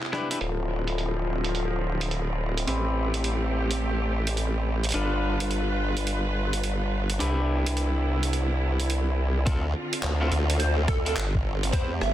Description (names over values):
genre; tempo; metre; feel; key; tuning
glitch hop; 106 BPM; 4/4; swing 64% on 16ths; D dorian; A4 = 443 Hz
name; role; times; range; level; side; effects
bright studio string section; sustained chords; 0.0-12.1 s; C3 to B4; -32 LUFS; right 2 dB; sidechain pumping, low-pass filter
boom bap sampler-style drum kit; drums; 0.0-12.1 s; handclaps, hi-hat, rim click; -32 LUFS; right 3 dB; soft clipping on snare, low-pass filter on snare, studio reverb, low-pass filter on hats
electric guitar at the edge of break-up; stabs; 0.1-11.9 s; C4 to C5; -32 LUFS; left 2 dB; sidechain pumping, low-pass filter, tape echo
formant-sweep wobble bass; bass; 0.4-12.1 s; D1 to E2; -26 LUFS; equal; chorus, overdrive
electronic kick drum; drums; 9.5-11.9 s; none; -26 LUFS; equal; studio reverb
plucky unison lead; melody; 10.6-12.1 s; A4 to E5; -31 LUFS; right 2 dB; phaser, analog chorus, tape echo
room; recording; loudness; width
light reverb; dense, heavily limited modern master; -24 LUFS; side -12 dB against mid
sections
0.4-9.5 A section; 9.5-12.1 B section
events
break 0.0-0.4; filter sweep on clean electric guitar 0.4-9.5; drop 9.5-12.1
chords
0.4 Dm7; 2.7 Am7; 4.9 G7; 7.2 Cmaj7; 9.5 Dm7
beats
| 0.41 0.98 1.54 2.11 | 2.67 3.24 3.81 4.37 | 4.94 5.50 6.07 6.64 | 7.20 7.77 8.34 8.90 | 9.47 10.03 10.60 11.16 | 11.73